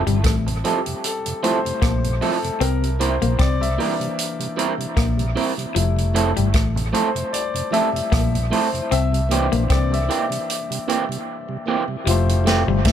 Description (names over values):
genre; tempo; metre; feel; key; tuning
lovers rock reggae; 76 BPM; 4/4; swing 56% on 16ths; F major; A4 = 441 Hz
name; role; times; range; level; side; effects
dark baby grand piano; accompaniment; 0.0-12.9 s; E3 to E5; -26 LUFS; left 5 dB; none
vintage muted fingered electric bass; bass; 0.0-12.9 s; F1 to C2; -21 LUFS; equal; none
mellow tonewheel organ; accompaniment; 0.1-12.8 s; F2 to E4; -31 LUFS; right 5 dB; slow rotary speaker, dub echo
electric guitar through a small old amp; riff; 0.1-12.9 s; F3 to C4; -25 LUFS; left 9 dB; none
vintage drum kit; drums; 0.1-12.9 s; hi-hat, kick drum, rim click, snare drum; -24 LUFS; right 1 dB; none
electric guitar through a small old amp; stabs; 0.5-12.6 s; E3 to Bb4; -25 LUFS; right 5 dB; dub echo
room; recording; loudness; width
light reverb, small room ambience; none; -18 LUFS; side -9 dB against mid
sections
0.0-12.1 A section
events
grand piano solo 0.0-12.1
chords
0.0 Fmaj7; 2.6 C7; 5.8 Fmaj7; 8.9 C7; 12.1 Fmaj9